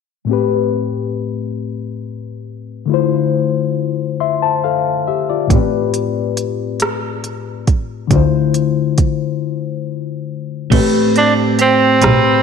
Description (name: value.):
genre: slow six-eight R&B.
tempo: 46 BPM (dotted quarters).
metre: 6/8.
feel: straight.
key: A minor.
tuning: A4 = 440 Hz.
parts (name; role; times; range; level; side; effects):
bright reed electric piano; accompaniment; 0.2-12.4 s; A2 to C6; -17 LUFS; left 8 dB; overdrive, phaser.
warm double bass; bass; 5.5-12.1 s; A1 to D2; -19 LUFS; right 3 dB; none.
smooth R&B drum kit; drums; 5.5-12.2 s; crash cymbal, hi-hat, kick drum, rim click; -17 LUFS; right 2 dB; overdrive.
clean electric guitar; second line; 10.7-12.4 s; A3 to B4; -17 LUFS; right 10 dB; none.
clear tenor saxophone; melody; 11.2-12.4 s; C4 to D4; -12 LUFS; right 3 dB; none.
room: moderate echo chamber reverb, RT60 2.2 s.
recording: 1960s-style stereo with parts hard left and right.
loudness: -14 LUFS.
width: side -6 dB against mid.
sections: 0.3-10.7 A section; 10.7-12.4 B section.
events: break 9.4-10.7.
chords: 0.3 Am9; 2.9 Dm9; 5.5 Am9; 8.1 Dm9; 10.7 Am9.